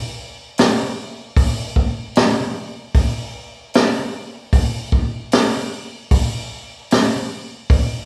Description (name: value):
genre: rock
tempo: 76 BPM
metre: 4/4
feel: straight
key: none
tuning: none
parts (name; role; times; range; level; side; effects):
- vintage drum kit; drums; 0.6-7.9 s; hi-hat, kick drum, snare drum; -19 LUFS; equal; none
room: wet large studio reverb, RT60 1.1 s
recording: band playing live in one room, small room ambience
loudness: -19 LUFS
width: mono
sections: 0.0-8.1 A section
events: none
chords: none